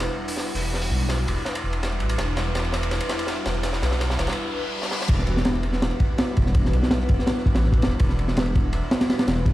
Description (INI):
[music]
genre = drum and bass, jungle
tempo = 165 BPM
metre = 4/4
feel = straight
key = E minor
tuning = A4 = 441 Hz
[part]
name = dark detuned saw bass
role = bass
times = 0.0-9.5 s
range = E1 to B1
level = -24 LUFS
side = equal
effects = none
[part]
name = crunchy breakbeat drum kit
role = drums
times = 0.0-9.5 s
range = crash cymbal, hi-hat, kick drum, ride cymbal, snare drum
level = -23 LUFS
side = equal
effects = high-pass filter on kick, high-pass filter on cymbals, high-pass filter on hats, high-pass filter on snare, high-pass filter on room
[part]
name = riser, reverse cymbal and impact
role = sound effects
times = 0.0-6.5 s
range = none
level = -34 LUFS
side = left 1 dB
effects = none
[sound]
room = light reverb, studio ambience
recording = played on a big sound system in a bare room, stone room reverb, vinyl crackle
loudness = -20 LUFS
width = side -16 dB against mid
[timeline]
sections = 0.0-5.1 A section; 5.1-9.5 B section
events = build-up 0.0-5.1; drum fill 0.0-4.4, 4.8; riser 0.0-5.1; break 4.4-5.1; reverse cymbal 4.4-5.1; drop 5.1-9.5; impact 5.1-6.5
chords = none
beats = 0.00 0.37 | 0.73 1.09 1.46 1.82 | 2.19 2.55 2.91 3.28 | 3.64 4.00 4.37 4.73 | 5.09 5.46 5.82 6.18 | 6.55 6.91 7.28 7.64 | 8.00 8.37 8.73 9.09 | 9.46